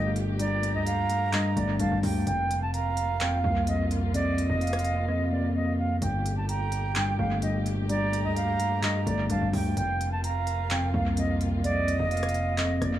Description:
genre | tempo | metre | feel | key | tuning
hip hop, trap | 128 BPM | 4/4 | half-time | G minor | A4 = 442 Hz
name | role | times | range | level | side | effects
concert flute | melody | 0.0-13.0 s | D5 to Bb5 | -31 LUFS | right 2 dB | low-pass filter, analog delay
mellow tine electric piano | accompaniment | 0.0-13.0 s | F2 to Bb3 | -28 LUFS | left 1 dB | low-pass filter, analog delay
muted studio string section | sustained chords | 0.0-13.0 s | Bb2 to G4 | -38 LUFS | left 2 dB | none
distorted 808-style bass | bass | 0.0-13.0 s | F1 to D2 | -32 LUFS | right 1 dB | distortion
trap drum kit | drums | 0.2-12.9 s | handclaps, hi-hat, rim click | -35 LUFS | equal | analog delay
breathy concert flute | second line | 0.4-13.0 s | Eb5 to Bb5 | -35 LUFS | right 6 dB | analog delay
room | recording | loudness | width
light reverb, small room ambience | echo-heavy mix | -24 LUFS | side -12 dB against mid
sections
0.0-13.0 A section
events
drums muted 5.1-6.0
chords
0.0 Gmadd9; 2.3 Fsus4; 6.0 Gmadd9; 9.8 Fsus4

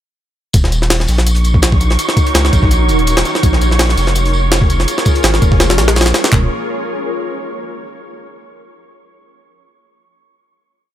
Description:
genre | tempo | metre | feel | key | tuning
drum and bass, jungle | 166 BPM | 4/4 | swing 54% on 16ths | Eb minor | A4 = 440 Hz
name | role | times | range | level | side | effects
granular cloud pad | sustained chords | 1.5-6.5 s | Eb4 to Db5 | -20 LUFS | equal | built-in reverb
saturated sub bass | bass | 0.5-6.5 s | Eb1 to Db2 | -14 LUFS | equal | tube saturation
crunchy breakbeat drum kit | drums | 0.5-6.2 s | hi-hat, snare drum, tambourine | -26 LUFS | left 2 dB | high-pass filter on hats, high-pass filter on snare, high-pass filter on perc, high-pass filter on room
jungle sampler-style drum kit | drums | 0.5-6.4 s | handclaps, hi-hat, kick drum, snare drum, toms | -13 LUFS | equal | none
wind-like tuned noise texture | texture | 1.0-6.3 s | Db6 | -23 LUFS | right 2 dB | built-in reverb
room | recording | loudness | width
light reverb, small room ambience | none | -11 LUFS | side -11 dB against mid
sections
0.5-6.3 drop; 6.3-7.8 final chord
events
drop 0.5-6.3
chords
0.5 Ebm7; 3.4 Bbm7; 6.3 Ebm7

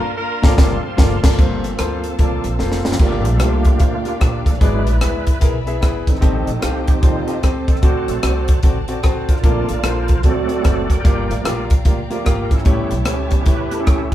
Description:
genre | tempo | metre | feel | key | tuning
uptempo gospel | 149 BPM | 4/4 | swing 63% on 8ths | G minor | A4 = 440 Hz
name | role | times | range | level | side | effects
warm horn section | melody | 0.0-1.4 s | G3 to Bb4 | -24 LUFS | left 1 dB | none
bright tonewheel organ | sustained chords | 0.0-14.1 s | D3 to C6 | -24 LUFS | right 3 dB | overdrive, chorus vibrato, fast rotary speaker
clear concert grand piano | accompaniment | 0.4-14.1 s | G2 to F5 | -23 LUFS | left 1 dB | none
upright bass | bass | 0.4-14.1 s | F1 to E2 | -22 LUFS | equal | none
crisp fusion drum kit | drums | 0.4-14.1 s | crash cymbal, hi-hat, kick drum, rim click, snare drum | -16 LUFS | equal | none
warm symphonic string section | sustained chords | 1.4-14.1 s | Bb3 to B5 | -33 LUFS | equal | none
room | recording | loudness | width
moderate studio reverb, RT60 0.9 s | band playing live in one room | -14 LUFS | side -13 dB against mid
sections
0.0-1.4 A section; 1.4-3.0 B section; 3.0-14.1 C section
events
band accent 0.0-1.4; drum fill 2.6-3.0; tonewheel organ solo 3.0-14.1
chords
0.0 Gm11; 3.0 Gm7; 4.6 E7/G#; 6.2 Am7b5; 7.8 D7; 9.4 Bbmaj7; 10.2 D7; 11.0 Gm7; 12.7 A7

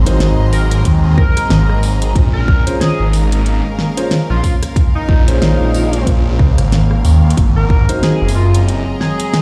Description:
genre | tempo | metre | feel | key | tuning
glitch hop | 92 BPM | 4/4 | swing 58% on 16ths | Bb minor | A4 = 440 Hz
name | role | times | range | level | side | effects
warbly tape-like pad | sustained chords | 0.0-9.4 s | Gb3 to Db4 | -26 LUFS | equal | chorus, built-in reverb, sidechain pumping
phased detuned saw bass | bass | 0.0-8.8 s | Gb1 to Eb2 | -15 LUFS | equal | phaser
rich studio string section | texture | 0.0-9.4 s | Ab4 to C6 | -29 LUFS | equal | sidechain pumping
warm grand piano | stabs | 0.1-8.2 s | Db4 to C5 | -25 LUFS | equal | sidechain pumping, dub echo
pop drum kit | drums | 0.1-9.4 s | hi-hat, rim click, snare drum | -20 LUFS | equal | none
sync lead | melody | 0.5-9.4 s | Eb4 to Bb4 | -25 LUFS | equal | subtle chorus, dub echo
electronic kick drum | drums | 0.9-7.9 s | none | -15 LUFS | equal | none
room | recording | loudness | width
little or no reverb | played on a big sound system in a bare room, large studio reverb | -13 LUFS | mono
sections
0.0-9.4 A section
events
none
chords
0.0 Ab7; 2.2 Bbm7; 7.4 Ab7

